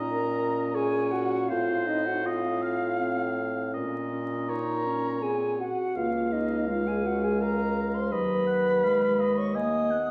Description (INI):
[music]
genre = classical, slow romantic movement for wind quintet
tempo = 82 BPM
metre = 3/4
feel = rubato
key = Bb minor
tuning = A4 = 440 Hz
[part]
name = silver concert flute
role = melody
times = 0.0-10.1 s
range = Eb5 to D#6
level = -37 LUFS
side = equal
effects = none
[part]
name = warm oboe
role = second line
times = 0.0-10.1 s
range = C5 to Ab5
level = -37 LUFS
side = equal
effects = none
[part]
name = dark clarinet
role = accompaniment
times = 0.0-10.1 s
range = F#3 to Eb4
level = -34 LUFS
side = equal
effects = none
[part]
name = mellow French horn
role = accompaniment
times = 0.0-10.1 s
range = Eb4 to D#5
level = -30 LUFS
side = equal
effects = none
[part]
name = mellow bassoon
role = bass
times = 0.0-10.1 s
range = Db2 to Bb2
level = -35 LUFS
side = equal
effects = none
[sound]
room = wet recital hall reverb, RT60 1.4 s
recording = heard from further back in the room, vinyl crackle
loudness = -27 LUFS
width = mono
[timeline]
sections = 0.0-10.1 A section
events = none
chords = 0.0 Bbm; 1.5 F/A; 3.7 Bbm; 6.0 Bbm/Db; 8.1 B/D#